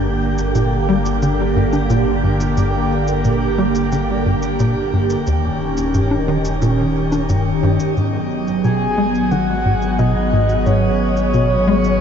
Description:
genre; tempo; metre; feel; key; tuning
ambient, sequencer-driven space music; 89 BPM; 4/4; straight; G# minor from 8.0 s; A4 = 440 Hz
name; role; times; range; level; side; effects
phased analog pad; sustained chords; 0.0-12.0 s; D3 to G#4; -19 LUFS; right 1 dB; phaser, chorus
tight sequencer bass; riff; 0.0-11.8 s; Eb2 to G#3; -19 LUFS; equal; ensemble chorus, tape echo
warm sub bass; bass; 0.0-12.0 s; Eb1 to G#1; -24 LUFS; equal; none
wind-like tuned noise texture; texture; 0.0-8.0 s; G4 to G5; -30 LUFS; equal; built-in reverb
shaker and congas; percussion; 0.4-12.0 s; none; -31 LUFS; left 2 dB; tape echo
breathy flute-like synth lead; melody; 8.6-12.0 s; C#5 to G#5; -19 LUFS; equal; wide subtle chorus, tape echo
room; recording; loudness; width
moderate shimmer reverb, RT60 8.0 s; dark, warm production, nothing above 7.7 kHz; -15 LUFS; side -8 dB against mid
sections
0.0-8.0 A section; 8.0-12.0 B section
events
none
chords
0.0 Gm; 5.3 Eb7; 8.0 G#m7

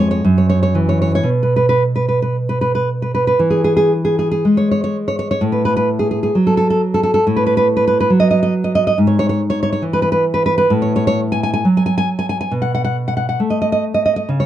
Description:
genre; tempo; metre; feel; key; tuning
romantic piece for solo classical guitar; 54-71 BPM; 2/4; rubato; E major; A4 = 440 Hz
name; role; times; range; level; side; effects
nylon-string guitar; solo; 0.0-14.5 s; E#2 to G#5; -14 LUFS; right 1 dB; none
room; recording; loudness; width
moderate studio reverb, RT60 0.7 s; dark, warm production, nothing above 10.5 kHz; -14 LUFS; side -12 dB against mid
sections
0.0-3.4 A section; 3.4-14.5 B section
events
none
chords
0.2 C#madd11/F#; 1.3 N.C.; 3.4 E; 5.4 F#m/A; 9.0 E/G#; 10.7 F#m/A; 12.5 B7

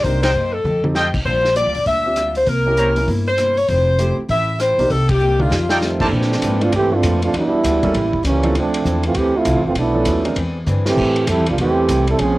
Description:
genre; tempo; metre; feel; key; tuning
jazz, big band swing; 197 BPM; 4/4; swing 62% on 8ths; F major; A4 = 440 Hz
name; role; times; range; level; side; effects
clear saxophone section; melody; 0.0-6.0 s; F4 to E5; -17 LUFS; left 1 dB; cassette tape
picked acoustic archtop guitar; accompaniment; 0.0-12.4 s; F2 to C5; -29 LUFS; left 3 dB; cassette tape
warm grand piano; accompaniment; 0.0-10.4 s; Bb2 to Bb4; -23 LUFS; right 2 dB; cassette tape
upright bass; bass; 0.0-12.4 s; F1 to Bb2; -20 LUFS; equal; none
vintage drum kit; drums; 0.0-12.3 s; crash cymbal, hi-hat, kick drum, ride cymbal, rim click, snare drum, toms; -25 LUFS; equal; none
clear trumpet section; stabs; 0.2-2.9, 5.7-6.1 s; Bb3 to Bb5; -20 LUFS; equal; cassette tape
warm trombone section; second line; 5.8-12.4 s; Eb3 to A4; -17 LUFS; right 2 dB; cassette tape
room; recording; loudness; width
light reverb; home recording on cassette; -15 LUFS; side -18 dB against mid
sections
0.0-6.1 A section; 6.1-12.4 B section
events
band accent 0.2, 5.1; drum fill 0.6-0.9, 5.2-5.8, 10.7-11.0; trombone section solo 6.1-12.4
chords
0.0 Cm7; 0.6 F9; 1.3 Bb6; 2.5 C7b9; 3.7 Fmaj9; 4.9 Cm7; 5.5 F13; 6.1 Bbmaj9#11; 7.3 Em9; 7.9 A7b9; 8.5 Dm9; 9.8 Bm7b5; 10.4 E7alt; 11.0 Am7

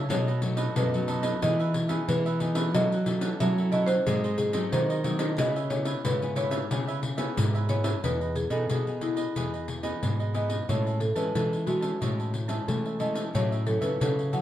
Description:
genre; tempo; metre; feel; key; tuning
samba and choro; 91 BPM; 4/4; straight; C# minor, E major from 8.0 s; A4 = 440 Hz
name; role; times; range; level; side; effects
marimba with medium mallets; melody; 0.0-14.4 s; E4 to F#5; -30 LUFS; equal; none
cavaquinho; accompaniment; 0.0-14.4 s; D#4 to A5; -36 LUFS; right 6 dB; none
nylon-string guitar; accompaniment; 0.0-14.4 s; F#2 to A4; -34 LUFS; left 3 dB; none
nylon-string guitar; bass; 0.0-14.4 s; E2 to A3; -29 LUFS; right 1 dB; none
pandeiro; percussion; 0.1-14.4 s; none; -31 LUFS; left 2 dB; none
room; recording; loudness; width
light reverb; dark, warm production; -25 LUFS; side -12 dB against mid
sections
0.0-8.0 A section; 8.0-14.4 B section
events
none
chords
0.1 B7; 1.4 Emaj7; 2.7 F#m7; 4.1 G#7; 5.4 C#m7; 8.0 Emaj7; 10.7 Amaj7; 13.3 F#m7/A

